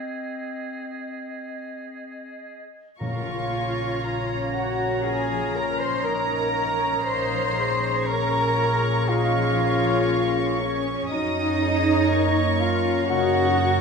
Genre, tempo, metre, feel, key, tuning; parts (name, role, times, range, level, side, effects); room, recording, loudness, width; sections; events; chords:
cinematic; 59 BPM; 4/4; rubato; Bb minor; A4 = 440 Hz
clear oboe; second line; 0.0-13.8 s; Ab4 to Bb5; -34 LUFS; right 2 dB
silver concert flute; second line; 0.0-13.8 s; Db5 to C6; -30 LUFS; right 2 dB
warm clarinet; second line; 0.0-13.8 s; C4 to Db5; -33 LUFS; left 4 dB
warm studio violin section; melody; 3.0-13.8 s; Bb5 to Eb6; -32 LUFS; equal
warm studio violin section; second line; 3.0-13.8 s; Db5 to C6; -34 LUFS; equal
warm studio viola section; accompaniment; 3.0-13.8 s; Bb3 to Db5; -31 LUFS; equal
warm French horn section; sustained chords; 3.0-13.8 s; Bb3 to Db4; -32 LUFS; left 5 dB
concert harp; arpeggios; 3.0-13.8 s; Bb2 to Bb5; -35 LUFS; left 3 dB
dark studio double bass section; bass; 3.0-13.8 s; Bb1 to Gb2; -28 LUFS; right 2 dB
warm studio cello section; bass; 3.0-13.8 s; Db4 to C5; -26 LUFS; equal
timpani; percussion; 3.0-4.5 s; Bb2; -34 LUFS; left 2 dB
wet recital hall reverb, RT60 1.4 s; minimal, uncompressed stereo recording; -21 LUFS; side -5 dB against mid
0.0-3.0 A section; 3.0-13.8 A section
0.0 Ab; 3.0 Bbm; 11.1 Gb